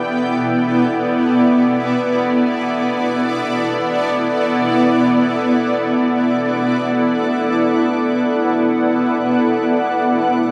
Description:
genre	ambient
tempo	free time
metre	none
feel	none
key	E minor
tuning	A4 = 440 Hz
part	granular cloud pad	solo	0.0-10.5 s	B3 to G5	-17 LUFS	equal	built-in reverb, diffuse ambient delay
room	wet huge ambient reverb, RT60 8.2 s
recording	none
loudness	-17 LUFS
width	mono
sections	0.0-7.0 A section; 7.0-10.5 A section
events	none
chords	0.0 Em7; 7.0 E5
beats	free time

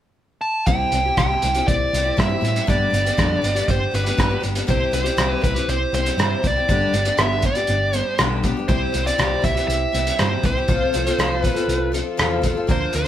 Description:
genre	folk rock and heartland rock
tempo	120 BPM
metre	4/4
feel	straight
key	C major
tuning	A4 = 440 Hz
part	dark smooth lead guitar	melody	0.4-13.1 s	B4 to A5	-22 LUFS	right 2 dB	overdrive
part	picked twelve-string acoustic guitar	accompaniment	0.7-13.1 s	G2 to Bb4	-24 LUFS	left 4 dB	none
part	hollow-body short-scale picked electric bass	bass	0.7-13.1 s	G1 to A2	-24 LUFS	equal	none
part	cloth-damped thuddy drum kit	drums	0.7-13.1 s	hi-hat, kick drum, rim click	-22 LUFS	right 1 dB	none
room	light reverb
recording	band playing live in one room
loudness	-17 LUFS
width	side -11 dB against mid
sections	0.7-4.7 A section; 4.7-13.1 B section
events	none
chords	0.0 N.C.; 0.7 C; 2.7 G; 4.7 C; 6.7 G; 8.7 C; 10.7 F/C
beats	0.17 | 0.67 1.18 1.68 2.18 | 2.68 3.18 3.68 4.18 | 4.68 5.19 5.69 6.19 | 6.69 7.19 7.69 8.19 | 8.69 9.19 9.69 10.19 | 10.69 11.19 11.69 12.19 | 12.69

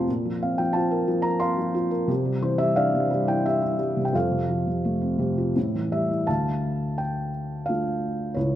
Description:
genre	classical, lyrical solo piano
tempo	87 BPM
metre	3/4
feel	rubato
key	F major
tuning	A4 = 439 Hz
part	felt-muted upright piano	solo	0.0-8.6 s	C#2 to C6	-22 LUFS	equal	none
room	moderate concert hall reverb, RT60 1.9 s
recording	dark, warm production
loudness	-22 LUFS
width	side -12 dB against mid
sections	0.0-6.3 A section; 6.3-8.6 B section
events	none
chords	0.1 Bbsus2; 2.1 Cadd9; 4.1 F; 5.6 A5; 6.3 Dm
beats	| 0.08 0.75 1.42 | 2.09 2.77 3.46 | 4.15 4.84 5.56 | 6.28 6.98 7.68 | 8.36

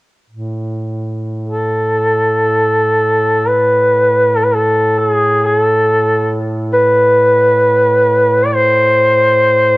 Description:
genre	caucasian folk, Caucasian lament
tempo	free time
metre	none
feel	none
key	A harmonic minor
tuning	A4 = 440 Hz
part	dark duduk	drone	0.3-9.8 s	A2	-19 LUFS	right 1 dB	cassette tape
part	warm duduk	melody	1.5-9.8 s	G#4 to D5	-10 LUFS	equal	cassette tape
room	light reverb, small room ambience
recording	home recording on cassette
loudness	-10 LUFS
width	side -20 dB against mid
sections	0.3-9.8 A section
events	none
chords	none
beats	free time

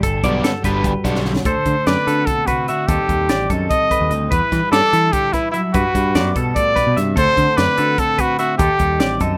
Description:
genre	math rock and midwest emo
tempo	294 BPM (eighths)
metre	7/8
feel	straight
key	G major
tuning	A4 = 440 Hz
part	twelve-string electric guitar	accompaniment	0.0-9.4 s	G2 to A4	-28 LUFS	equal	subtle chorus
part	twelve-string electric guitar	arpeggios	0.0-9.4 s	A4 to E5	-26 LUFS	equal	none
part	growling picked electric bass	bass	0.0-9.4 s	G1 to E3	-23 LUFS	equal	overdrive
part	crisp fusion drum kit	drums	0.0-9.3 s	hi-hat, kick drum, snare drum	-25 LUFS	equal	none
part	overdriven electric guitar	riff	0.2-1.3 s	D3 to D4	-24 LUFS	equal	none
part	clear trumpet	melody	1.5-9.2 s	E4 to Eb5	-20 LUFS	equal	none
room	little or no reverb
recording	rough home demo mix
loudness	-17 LUFS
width	mono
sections	0.0-1.5 A section; 1.5-9.4 B section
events	drum fill 1.2-1.5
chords	0.0 Gmaj9; 1.5 D13; 2.9 Cm6; 4.3 Em7; 5.7 Gmaj7; 7.2 D13; 8.6 Cm6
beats	| 0.03 0.23 0.44 0.64 0.84 1.05 1.25 | 1.46 1.66 1.87 2.07 2.27 2.48 2.68 | 2.89 3.09 3.30 3.50 3.71 3.91 4.11 | 4.32 4.52 4.73 4.93 5.13 5.34 5.54 | 5.75 5.95 6.16 6.36 6.56 6.77 6.97 | 7.17 7.38 7.58 7.79 7.99 8.20 8.40 | 8.60 8.81 9.01 9.22

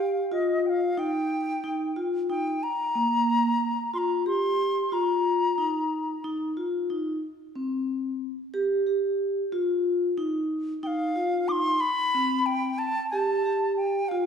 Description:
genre	progressive instrumental, progressive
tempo	183 BPM (eighths)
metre	7/8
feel	straight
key	unclear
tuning	A4 = 443 Hz
part	wooden flute	melody	0.0-6.2, 10.8-14.3 s	Eb5 to D6	-27 LUFS	left 1 dB	none
part	vibraphone with medium hard mallets	arpeggios	0.0-14.3 s	Bb3 to G4	-26 LUFS	equal	none
room	wet recital hall reverb, RT60 1.5 s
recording	recorded in a church or concert hall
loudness	-24 LUFS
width	side -7 dB against mid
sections	0.0-14.3 A section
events	none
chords	0.0 Cm (rootless); 2.6 Ebsus2; 7.2 Fsus2; 11.8 Amadd9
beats	| 0.31 0.64 0.97 1.30 1.63 1.96 2.29 | 2.62 2.95 3.28 3.61 3.94 4.27 4.60 | 4.93 5.25 5.58 5.91 6.24 6.57 6.90 | 7.23 7.55 7.88 8.21 8.54 8.87 9.20 | 9.53 9.85 10.18 10.51 10.84 11.17 11.49 | 11.82 12.15 12.48 12.81 13.13 13.46 13.79 | 14.12

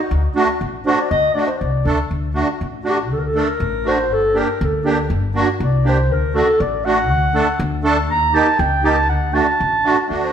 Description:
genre	klezmer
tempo	120 BPM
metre	2/4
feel	straight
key	D phrygian dominant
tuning	A4 = 440 Hz
part	upright bass	bass	0.1-10.3 s	G1 to Eb2	-21 LUFS	left 1 dB	none
part	musette accordion	accompaniment	0.4-10.3 s	A3 to A4	-19 LUFS	right 2 dB	none
part	dark clarinet	melody	0.9-10.3 s	G4 to Bb5	-19 LUFS	equal	none
room	wet stone room reverb, RT60 1.4 s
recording	band playing live in one room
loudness	-15 LUFS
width	side -8 dB against mid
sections	0.0-2.1 A section; 2.1-10.1 B section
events	clarinet solo 2.1-10.1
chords	0.1 D; 4.1 Gm; 6.1 D; 8.1 Eb; 9.1 D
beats	| 0.11 0.61 | 1.11 1.61 | 2.11 2.61 | 3.11 3.61 | 4.11 4.61 | 5.11 5.61 | 6.10 6.60 | 7.10 7.60 | 8.10 8.60 | 9.10 9.60 | 10.10

